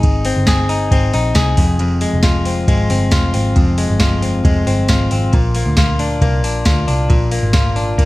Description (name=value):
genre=jangly indie pop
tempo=136 BPM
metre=4/4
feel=straight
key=unclear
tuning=A4 = 441 Hz
part: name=direct-recorded clean electric guitar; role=arpeggios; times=0.0-8.1 s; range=F2 to Ab4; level=-18 LUFS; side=left 2 dB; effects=none
part: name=vintage muted picked electric bass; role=bass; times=0.0-8.1 s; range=F1 to D2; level=-17 LUFS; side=equal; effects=none
part: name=soft vintage rhythm box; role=drums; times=0.0-8.1 s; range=hi-hat, kick drum, ride cymbal, snare drum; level=-16 LUFS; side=equal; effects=none
room=light reverb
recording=vinyl crackle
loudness=-12 LUFS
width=side -18 dB against mid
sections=0.0-8.1 A section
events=none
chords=0.0 Ab; 1.6 Fm; 5.3 Bb